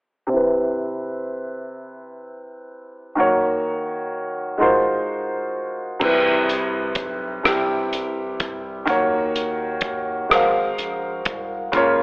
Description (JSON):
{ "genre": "slow six-eight R&B", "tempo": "42 BPM (dotted quarters)", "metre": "6/8", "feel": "straight", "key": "unclear", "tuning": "A4 = 440 Hz", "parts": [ { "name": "warm concert grand piano", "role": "accompaniment", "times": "0.3-12.0 s", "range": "C3 to F5", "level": "-20 LUFS", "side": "equal", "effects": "low-pass filter" }, { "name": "round analog bass", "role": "bass", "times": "6.0-12.0 s", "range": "Ab1 to Eb2", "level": "-36 LUFS", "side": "equal", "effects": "none" }, { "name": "warm soul drum kit", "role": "drums", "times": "6.0-12.0 s", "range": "crash cymbal, hi-hat, kick drum, rim click", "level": "-22 LUFS", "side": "equal", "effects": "vintage 12-bit sampler grit" } ], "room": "light reverb, small room ambience", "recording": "telephone sound", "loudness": "-19 LUFS", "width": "side -28 dB against mid", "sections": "0.3-6.0 A section; 6.0-12.0 B section", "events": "filter sweep on grand piano 0.3-6.0", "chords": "0.3 Cmaj7; 3.2 Ebm7; 4.6 Ab13; 6.0 Cmaj7; 8.9 Ebm7; 10.3 Ab13", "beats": "| 0.30 1.73 | 3.15 4.58 | 6.01 7.44 | 8.87 10.30 | 11.73" }